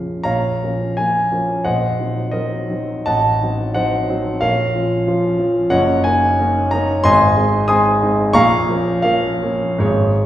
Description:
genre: classical, romantic character piece for solo piano.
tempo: 67-94 BPM.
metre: 2/4.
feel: rubato.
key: Bb minor.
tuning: A4 = 440 Hz.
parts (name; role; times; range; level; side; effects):
warm grand piano; solo; 0.0-10.3 s; Gb1 to Eb6; -14 LUFS; equal; none.
room: wet recital hall reverb, RT60 1.3 s.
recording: recorded in a church or concert hall.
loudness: -15 LUFS.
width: side -12 dB against mid.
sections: 0.2-10.3 A section.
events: none.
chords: 0.2 Bbm; 1.7 Cm7b5/Bb; 3.1 Adim7; 4.4 Bbm; 5.7 Ebm7/Gb; 7.1 Ab; 8.4 Bbm.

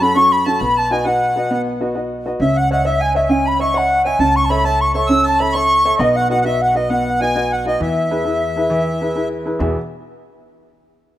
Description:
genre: celtic folk, Celtic slide.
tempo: 133 BPM (dotted quarters).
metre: 12/8.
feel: straight.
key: E major.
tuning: A4 = 436 Hz.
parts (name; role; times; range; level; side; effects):
wooden flute; melody; 0.0-9.3 s; D#5 to E6; -16 LUFS; left 1 dB; none.
accordion; second line; 0.0-9.3 s; D#5 to E6; -23 LUFS; equal; none.
warm upright piano; accompaniment; 0.0-9.8 s; E2 to E5; -20 LUFS; right 1 dB; none.
upright bass; bass; 0.0-9.8 s; B1 to F#2; -24 LUFS; equal; none.
room: light reverb, small room ambience.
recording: rough home demo mix.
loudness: -14 LUFS.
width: side -13 dB against mid.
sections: 0.0-9.6 A section; 9.6-11.2 B section.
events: none.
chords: 0.0 F#m; 0.6 B; 2.4 C#madd9; 4.2 A/C#; 6.0 B; 7.8 E; 9.6 E5.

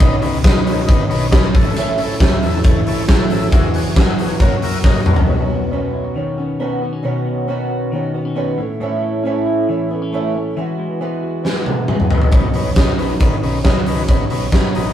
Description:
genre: jangly indie pop.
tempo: 136 BPM.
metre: 4/4.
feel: straight.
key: B mixolydian.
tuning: A4 = 441 Hz.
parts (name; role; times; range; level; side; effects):
combo organ; accompaniment; 0.0-5.2, 12.3-14.9 s; D#4 to E5; -25 LUFS; left 4 dB; none.
fingerpicked twelve-string acoustic guitar; accompaniment; 0.0-14.9 s; A2 to F#4; -22 LUFS; right 3 dB; none.
clean electric guitar; arpeggios; 0.0-14.9 s; A2 to F#4; -23 LUFS; left 2 dB; analog delay.
vintage muted picked electric bass; bass; 0.0-5.3, 12.3-14.9 s; E1 to B2; -24 LUFS; equal; none.
big rock drum kit; drums; 0.0-5.3, 11.4-14.9 s; hi-hat, kick drum, ride cymbal, snare drum, toms; -14 LUFS; equal; none.
room: light reverb.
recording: rough rehearsal-room recording.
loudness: -14 LUFS.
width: side -10 dB against mid.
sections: 0.0-5.3 A section; 5.3-14.9 B section.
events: drum fill 4.8-5.3, 11.5-12.3; transistor combo organ fill 14.5-14.9.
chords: 0.0 Badd9; 1.6 A; 3.5 Eadd9; 4.4 F#; 5.3 Badd9; 8.6 A; 10.6 Eadd9; 12.3 Badd9.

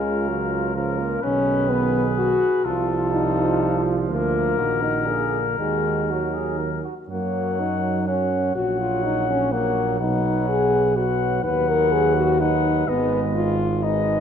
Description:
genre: classical, brass quintet.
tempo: 124 BPM.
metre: 3/4.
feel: straight.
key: Eb minor, F# major from 7.1 s.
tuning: A4 = 440 Hz.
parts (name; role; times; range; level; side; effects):
mellow trumpet; melody; 0.0-14.2 s; A4 to F#5; -27 LUFS; left 10 dB; none.
mellow flugelhorn; second line; 0.0-14.2 s; F4 to C#5; -30 LUFS; right 9 dB; none.
bright trombone; accompaniment; 0.0-14.2 s; Db3 to Ab3; -30 LUFS; right 5 dB; none.
warm French horn; accompaniment; 0.0-14.2 s; F3 to B4; -23 LUFS; left 3 dB; none.
warm tuba; bass; 0.0-14.2 s; Ab1 to F#2; -25 LUFS; right 4 dB; none.
room: wet recital hall reverb, RT60 1.6 s.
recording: dark, warm production.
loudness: -19 LUFS.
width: side -8 dB against mid.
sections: 0.0-7.1 A section; 7.1-14.2 B section.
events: none.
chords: 0.0 Bbm/Db; 1.2 Abm/Cb; 2.7 F7/C; 4.1 Bb/D; 4.6 Ebm/Bb; 5.1 Bb7; 5.6 Ebm; 7.1 F#; 8.6 F#/A#; 10.0 B; 11.4 B/D#; 12.9 Abm.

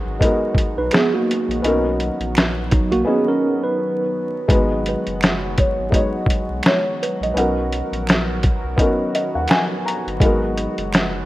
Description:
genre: lo-fi hip hop.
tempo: 84 BPM.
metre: 4/4.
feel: swing 58% on 16ths.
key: G# minor.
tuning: A4 = 440 Hz.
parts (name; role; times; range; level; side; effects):
felt-muted upright piano; accompaniment; 0.0-11.3 s; G#3 to A#5; -22 LUFS; left 1 dB; low-pass filter.
warbly tape-like pad; sustained chords; 0.0-11.3 s; D#3 to A#4; -28 LUFS; equal; chorus, built-in reverb, low-pass filter.
saturated sub bass; bass; 0.1-11.3 s; F#1 to D#2; -27 LUFS; equal; none.
lo-fi sampler-style drum kit; drums; 0.2-11.1 s; hi-hat, kick drum, snare drum; -18 LUFS; equal; overdrive.
tine electric piano; second line; 0.8-4.5 s; F#3 to B4; -20 LUFS; right 2 dB; medium tremolo, low-pass filter, analog delay.
finger snap; percussion; 0.9-11.1 s; none; -34 LUFS; right 4 dB; none.
kalimba; melody; 4.9-9.8 s; B4 to F#5; -25 LUFS; right 1 dB; low-pass filter.
room: light reverb, small room reverb.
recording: rough home demo mix, vinyl crackle.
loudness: -17 LUFS.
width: side -16 dB against mid.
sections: 0.0-11.3 A section.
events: silent gap 3.1-4.5; felt piano fill 8.8-10.2.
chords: 0.0 G#m7; 1.6 Bmaj7; 4.5 G#m7; 7.4 Bmaj7; 10.2 G#m7.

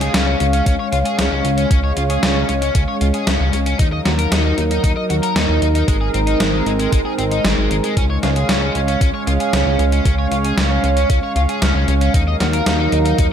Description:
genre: synthwave.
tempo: 115 BPM.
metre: 4/4.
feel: straight.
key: Db major.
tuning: A4 = 440 Hz.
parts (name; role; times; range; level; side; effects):
warm analog pad; sustained chords; 0.0-13.3 s; Gb3 to F5; -19 LUFS; right 1 dB; chorus, sidechain pumping.
biting overdriven guitar; riff; 0.0-13.3 s; Ab3 to Eb5; -24 LUFS; left 4 dB; wide subtle chorus, tape echo.
chorused synth bass; bass; 0.0-13.3 s; Ab1 to Eb2; -19 LUFS; equal; sidechain pumping.
clean 12-bit digital drum machine; drums; 0.0-13.3 s; hi-hat, snare drum; -21 LUFS; equal; gated reverb.
electronic kick drum; drums; 0.7-13.3 s; none; -16 LUFS; equal; none.
room: light reverb.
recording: none.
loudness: -14 LUFS.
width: side -8 dB against mid.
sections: 0.0-13.3 A section.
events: none.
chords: 0.0 Db; 3.8 Ebmadd9; 5.9 Abadd9; 8.0 Db; 12.1 Ebmadd9.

